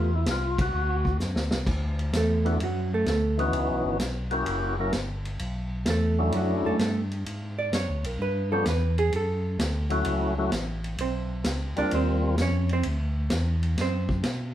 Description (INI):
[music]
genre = soul jazz organ trio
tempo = 129 BPM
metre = 4/4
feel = swing 69% on 8ths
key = D major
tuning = A4 = 440 Hz
[part]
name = percussive tonewheel organ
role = melody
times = 0.0-12.4 s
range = E3 to A#4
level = -28 LUFS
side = left 2 dB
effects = slow rotary speaker, overdrive, plate reverb
[part]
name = hollow-body jazz guitar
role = accompaniment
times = 0.0-14.5 s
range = F#3 to D5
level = -28 LUFS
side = right 3 dB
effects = none
[part]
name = tonewheel organ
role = bass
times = 0.0-14.5 s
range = F#1 to B2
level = -27 LUFS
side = equal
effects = chorus vibrato, slow rotary speaker
[part]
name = vintage drum kit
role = drums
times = 0.3-14.4 s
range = crash cymbal, hi-hat, kick drum, ride cymbal, snare drum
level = -32 LUFS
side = equal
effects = none
[sound]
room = wet studio reverb, RT60 0.7 s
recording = heard from further back in the room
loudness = -24 LUFS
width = side -12 dB against mid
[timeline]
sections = 0.0-1.7 A section; 1.7-14.5 B section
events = band accent 0.5; drum fill 1.2-1.7; hollow-body jazz guitar solo 1.7-14.5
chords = 0.0 Am9; 0.7 D7; 1.7 D6; 3.5 C#m7b5; 4.5 F#7b9; 5.4 Bm11; 7.3 G#m7b5; 8.2 G7#11; 9.1 F#m7; 11.0 Gadd11/B; 11.9 Eb13; 12.8 D6